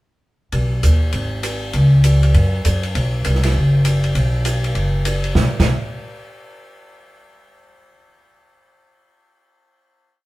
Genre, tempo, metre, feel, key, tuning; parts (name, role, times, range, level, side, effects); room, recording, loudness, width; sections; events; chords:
jazz piano trio; 199 BPM; 4/4; swing 63% on 8ths; B major; A4 = 440 Hz
upright bass; bass; 0.5-5.7 s; F#1 to F#2; -15 LUFS; equal
open jazz drum kit; drums; 0.5-5.6 s; crash cymbal, hi-hat, kick drum, ride cymbal, snare drum; -22 LUFS; equal
moderate stone room reverb, RT60 1.0 s; band playing live in one room; -15 LUFS; side -19 dB against mid
0.5-5.3 A section; 5.3-6.5 final note